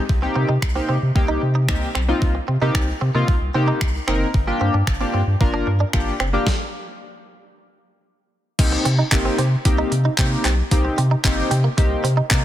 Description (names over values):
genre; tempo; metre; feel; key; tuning
dance-pop; 113 BPM; 4/4; straight; C minor; A4 = 441 Hz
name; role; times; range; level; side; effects
chorused polysynth; accompaniment; 0.0-12.4 s; Bb3 to Bb4; -23 LUFS; left 1 dB; sidechain pumping
saturated sub bass; bass; 0.1-12.4 s; F#1 to C3; -20 LUFS; equal; sidechain pumping
crisp 8-bit digital drum machine; drums; 0.1-12.4 s; crash cymbal, finger snaps, handclaps, hi-hat, kick drum, snare drum; -21 LUFS; equal; overdrive, soft clipping on snare
direct-recorded clean electric guitar; riff; 0.2-12.3 s; Bb3 to Eb4; -28 LUFS; right 5 dB; analog chorus
room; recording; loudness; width
light reverb, digital ambience; dense, heavily limited modern master; -17 LUFS; side -12 dB against mid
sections
0.0-8.6 A section; 8.6-12.4 B section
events
stop 6.5-8.6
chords
0.1 Cm7; 4.3 Gm7; 8.6 Cm7